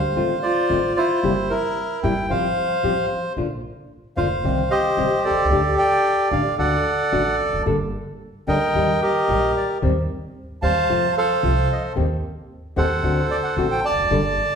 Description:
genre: tango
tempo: 112 BPM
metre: 4/4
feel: rubato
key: unclear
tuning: A4 = 441 Hz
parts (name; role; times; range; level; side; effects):
- bandoneon; melody; 0.0-14.6 s; E4 to A5; -20 LUFS; right 1 dB; none
- upright bass; bass; 0.0-14.3 s; E1 to F2; -26 LUFS; right 1 dB; none
- nylon-string guitar; accompaniment; 0.2-14.2 s; C3 to A4; -25 LUFS; left 3 dB; none
room: wet large studio reverb, RT60 1.4 s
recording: band playing live in one room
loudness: -18 LUFS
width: side -6 dB against mid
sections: 0.0-14.6 A section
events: none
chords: 0.2 F7/A; 1.2 C7/G; 2.3 Fadd9/A; 3.4 Bb; 4.4 Cm; 5.5 Dsus4; 6.6 D; 7.7 Gmadd9; 8.7 Eb; 9.8 Cm/Eb; 10.9 F; 12.0 Cm7/Eb; 13.0 D7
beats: 0.16 0.70 | 1.24 1.77 2.30 2.84 | 3.37 3.91 4.44 4.98 | 5.51 6.05 6.59 7.13 | 7.67 8.21 8.75 9.28 | 9.82 10.36 10.89 11.42 | 11.96 12.50 13.03 13.57 | 14.10

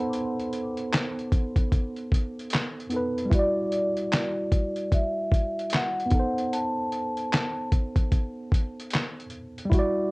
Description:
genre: lo-fi hip hop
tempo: 75 BPM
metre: 4/4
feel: swing 61% on 16ths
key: unclear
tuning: A4 = 440 Hz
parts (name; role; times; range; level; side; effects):
- large celesta; second line; 0.0-1.1 s; F#5 to B5; -41 LUFS; left 2 dB; low-pass filter, tape echo
- tine electric piano; accompaniment; 0.0-10.1 s; G3 to D5; -29 LUFS; right 1 dB; medium stereo tremolo, cassette tape, low-pass filter
- lo-fi sampler-style drum kit; drums; 0.1-10.0 s; handclaps, hi-hat, kick drum, snare drum; -24 LUFS; equal; overdrive
- vibraphone with soft mallets; melody; 3.3-7.7 s; D5 to A5; -29 LUFS; left 1 dB; low-pass filter
room: light reverb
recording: worn, warbling old tape, cassette tape, warbly pitch drift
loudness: -24 LUFS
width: side -25 dB against mid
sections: 0.0-10.1 A section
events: none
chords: 0.0 B7b9; 3.3 Em9; 6.1 B7b9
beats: | 0.12 0.92 1.72 2.52 | 3.31 4.12 4.92 5.71 | 6.51 7.32 8.12 8.91 | 9.71

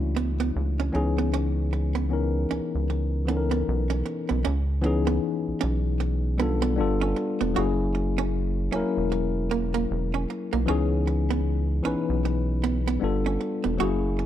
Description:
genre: R&B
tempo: 77 BPM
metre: 4/4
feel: swing 60% on 16ths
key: C# dorian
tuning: A4 = 441 Hz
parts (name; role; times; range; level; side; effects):
- tine electric piano; accompaniment; 0.0-14.3 s; E3 to B4; -27 LUFS; left 4 dB; auto-pan
- rubbery square bass; bass; 0.0-14.3 s; E1 to C#2; -26 LUFS; equal; none
- archtop guitar, miked and amplified; second line; 0.2-14.2 s; A#3 to F#4; -30 LUFS; right 11 dB; none
room: digital ambience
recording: dark, warm production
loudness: -23 LUFS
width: side -11 dB against mid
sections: 0.0-4.4 A section; 4.4-14.3 B section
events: none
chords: 0.0 Dmaj9; 0.9 C#m7; 4.4 C#m9; 6.8 G9; 7.6 F#9; 10.7 C#m9; 13.0 G9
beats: 0.55 | 1.32 2.10 2.88 3.66 | 4.44 5.22 6.00 6.78 | 7.56 8.34 9.12 9.90 | 10.68 11.46 12.23 13.01 | 13.79

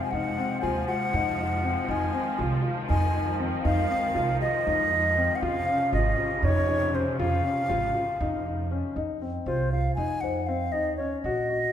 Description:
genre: contemporary instrumental, chamber music in an uneven meter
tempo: 238 BPM (eighths)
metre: 7/8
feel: straight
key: F phrygian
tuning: A4 = 440 Hz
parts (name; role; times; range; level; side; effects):
- bright baroque flute; melody; 0.0-11.7 s; C5 to Ab5; -27 LUFS; equal; none
- muted symphonic string section; sustained chords; 0.0-8.9 s; C3 to Ab3; -33 LUFS; equal; none
- dark baby grand piano; arpeggios; 0.0-11.7 s; C4 to Gb4; -31 LUFS; left 4 dB; none
- upright bass; bass; 0.1-11.6 s; Ab1 to F2; -29 LUFS; right 2 dB; none
- small celesta; texture; 0.6-2.1, 5.7-11.1 s; C5 to F5; -37 LUFS; left 4 dB; none
room: wet recital hall reverb, RT60 1.8 s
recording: recorded in a church or concert hall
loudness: -24 LUFS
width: side -10 dB against mid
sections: 0.0-9.0 A section; 9.0-11.7 B section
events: none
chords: 0.0 Ab7; 1.9 Fm7; 5.4 Dbmaj7; 9.0 F5; 10.7 Ebm7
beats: | 0.12 0.37 0.62 0.87 1.13 1.38 1.63 | 1.89 2.14 2.39 2.64 2.90 3.15 3.40 | 3.65 3.90 4.16 4.41 4.66 4.92 5.17 | 5.42 5.67 5.92 6.18 6.43 6.68 6.93 | 7.19 7.44 7.69 7.95 8.20 8.45 8.70 | 8.96 9.21 9.46 9.71 9.97 10.22 10.47 | 10.73 10.98 11.23 11.49

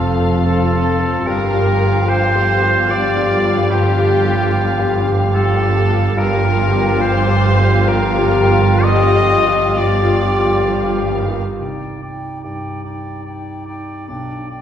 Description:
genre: cinematic, emotional film score for orchestra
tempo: 61-75 BPM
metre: 3/4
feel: rubato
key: unclear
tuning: A4 = 441 Hz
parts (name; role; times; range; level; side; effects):
- muted studio violin section; melody; 0.0-11.4 s; F5; -26 LUFS; left 3 dB; none
- clear clarinet; second line; 0.0-14.6 s; D4 to F4; -26 LUFS; left 2 dB; none
- clear oboe; second line; 0.0-14.6 s; G4 to Eb5; -22 LUFS; right 1 dB; none
- mellow hollow concert flute; second line; 0.0-14.6 s; G5 to A5; -26 LUFS; equal; none
- muted studio violin section; second line; 0.0-11.2 s; G4 to Eb5; -24 LUFS; left 1 dB; none
- muted studio viola section; accompaniment; 0.0-11.6 s; D3 to A4; -25 LUFS; equal; none
- warm concert grand piano; accompaniment; 0.0-14.6 s; B1 to A4; -21 LUFS; left 2 dB; none
- warm French horn section; sustained chords; 0.0-11.2 s; F3 to A4; -23 LUFS; left 5 dB; none
- muted studio cello section; bass; 0.0-11.4 s; F2 to G2; -20 LUFS; right 2 dB; none
- muted studio double bass section; bass; 0.0-11.4 s; F1 to G1; -22 LUFS; right 2 dB; none
room: wet scoring stage reverb, RT60 1.8 s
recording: recorded in a church or concert hall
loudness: -13 LUFS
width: side -9 dB against mid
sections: 0.0-11.6 A section; 11.6-14.6 B section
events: none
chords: 0.0 F; 1.3 Gm7; 11.6 Cmadd9; 14.1 G/B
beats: 0.47 | 1.27 2.08 2.89 | 3.71 4.53 5.35 | 6.18 7.01 7.88 | 8.84 9.77 10.69 | 11.60 12.44 13.27 | 14.09

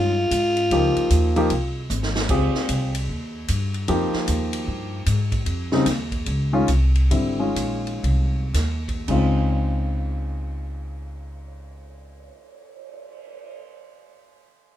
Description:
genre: modal jazz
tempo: 106-152 BPM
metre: 4/4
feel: swing 64% on 8ths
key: Db lydian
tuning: A4 = 440 Hz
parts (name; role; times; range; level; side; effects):
- growling alto saxophone; melody; 0.0-1.9 s; F4; -21 LUFS; left 1 dB; none
- warm grand piano; accompaniment; 0.0-12.4 s; Db3 to Ab4; -23 LUFS; left 2 dB; none
- upright bass; bass; 0.0-12.3 s; Ab1 to Ab2; -23 LUFS; equal; none
- swinging big-band drum kit; drums; 0.3-13.5 s; crash cymbal, cymbal swell, hi-hat, kick drum, ride cymbal, snare drum, toms; -30 LUFS; right 1 dB; none
room: light reverb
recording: minimal, uncompressed stereo recording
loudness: -20 LUFS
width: side -12 dB against mid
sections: 0.0-2.3 A section; 2.3-9.1 B section; 9.1-13.6 C section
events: drum fill 1.9-2.3; slowing down 5.5-9.1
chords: 0.0 Dbmaj9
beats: 0.32 | 0.71 1.11 1.51 1.90 | 2.30 2.69 3.09 3.48 | 3.88 4.28 4.67 5.07 | 5.46 5.86 6.27 6.68 | 7.11 7.56 8.04 8.54 | 9.09 9.66 10.22 10.79 | 11.36 11.93 12.49 13.06

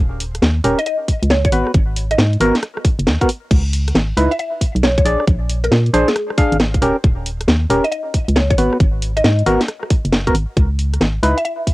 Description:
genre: UK garage, two-step garage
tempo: 136 BPM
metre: 4/4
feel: swing 66% on 16ths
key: C# dorian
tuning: A4 = 441 Hz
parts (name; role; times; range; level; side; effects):
- organ-like FM bass; bass; 0.0-11.3 s; D#1 to A#2; -17 LUFS; equal; none
- garage drum kit; drums; 0.2-11.7 s; crash cymbal, hi-hat, rim click, snare drum; -19 LUFS; equal; cassette tape
- percussive organ stab; stabs; 0.6-11.4 s; B3 to E#5; -18 LUFS; equal; chorus, cassette tape, tape echo
- mallet-like synth pluck; melody; 0.8-11.5 s; G#4 to E5; -22 LUFS; equal; phaser, ensemble chorus, cassette tape, tape echo
- electronic kick drum; drums; 1.1-11.7 s; none; -15 LUFS; equal; cassette tape
room: light reverb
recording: home recording on cassette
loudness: -14 LUFS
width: side -19 dB against mid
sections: 0.0-11.7 A section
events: none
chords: 0.0 D#7; 1.5 G#m7; 3.5 C#m9; 5.1 A#7; 6.8 D#7; 8.6 G#m7; 10.6 C#m9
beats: 0.42 0.86 1.30 | 1.74 2.19 2.63 3.07 | 3.51 3.95 4.39 4.83 | 5.27 5.71 6.16 6.60 | 7.04 7.48 7.92 8.36 | 8.80 9.24 9.69 10.13 | 10.57 11.01 11.45

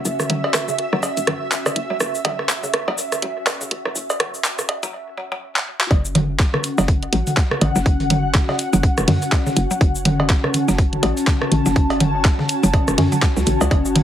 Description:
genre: minimal techno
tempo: 123 BPM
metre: 4/4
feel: swing 59% on 16ths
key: F# minor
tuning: A4 = 440 Hz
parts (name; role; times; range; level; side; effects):
- ethereal airy pad; texture; 0.0-14.0 s; C#4 to A5; -24 LUFS; equal; ensemble chorus, built-in reverb, sidechain pumping
- hollow knocking FM bass; bass; 0.1-14.0 s; E1 to F#2; -22 LUFS; equal; sidechain pumping
- garage drum kit; drums; 0.1-14.0 s; cabasa, handclaps, hi-hat; -23 LUFS; equal; overdrive
- booming analog drum machine; percussion; 0.2-14.0 s; cowbell, rim click, toms; -22 LUFS; equal; tape echo
- mallet-like synth pluck; riff; 0.3-14.0 s; C#3 to F#4; -26 LUFS; right 1 dB; chorus, sidechain pumping, digital delay
- dusty soul sampler-style drum kit; drums; 5.9-14.0 s; hi-hat, snare drum; -34 LUFS; left 1 dB; overdrive, high-pass filter on hats, high-pass filter on snare, high-pass filter on room
- electronic kick drum; drums; 5.9-13.8 s; none; -16 LUFS; equal; overdrive
room: moderate studio reverb, RT60 0.5 s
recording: heavily compressed radio sound, multiband compression, high-pass filter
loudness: -16 LUFS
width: side -11 dB against mid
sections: 0.0-5.9 A section; 5.9-14.0 B section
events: build-up 0.0-5.9; filter sweep on synth arpeggio sound 0.0-5.9; filter sweep 0.0-5.9; drum fill 5.5-5.9; drop 5.9-14.0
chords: 0.0 F#5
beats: | 0.05 0.54 1.03 1.52 | 2.00 2.49 2.98 3.47 | 3.96 4.44 4.93 5.42 | 5.91 6.39 6.88 7.37 | 7.86 8.35 8.83 9.32 | 9.81 10.30 10.79 11.27 | 11.76 12.25 12.74 13.22 | 13.71

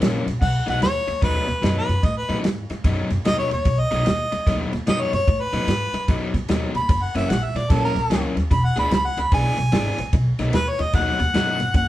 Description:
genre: electric blues shuffle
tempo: 148 BPM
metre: 4/4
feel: swing 64% on 8ths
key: B mixolydian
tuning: A4 = 440 Hz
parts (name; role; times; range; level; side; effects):
- overdriven semi-hollow guitar; riff; 0.0-11.8 s; F#2 to G#4; -26 LUFS; left 2 dB; none
- upright bass; bass; 0.0-11.9 s; E1 to A2; -25 LUFS; equal; none
- warm soul drum kit; drums; 0.0-11.9 s; crash cymbal, kick drum, ride cymbal, snare drum; -23 LUFS; equal; none
- warm harmonica; melody; 0.4-11.9 s; A4 to B5; -23 LUFS; equal; none
room: moderate studio reverb, RT60 0.6 s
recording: band playing live in one room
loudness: -19 LUFS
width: side -14 dB against mid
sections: 0.4-11.9 A section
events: harmonica solo 0.0-11.9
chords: 0.4 B7; 6.9 F#7; 8.5 E7; 10.1 B7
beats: 0.01 | 0.41 0.82 1.22 1.63 | 2.03 2.44 2.84 3.25 | 3.65 4.05 4.46 4.86 | 5.27 5.67 6.08 6.48 | 6.89 7.29 7.70 8.10 | 8.51 8.91 9.31 9.72 | 10.12 10.53 10.93 11.34 | 11.74

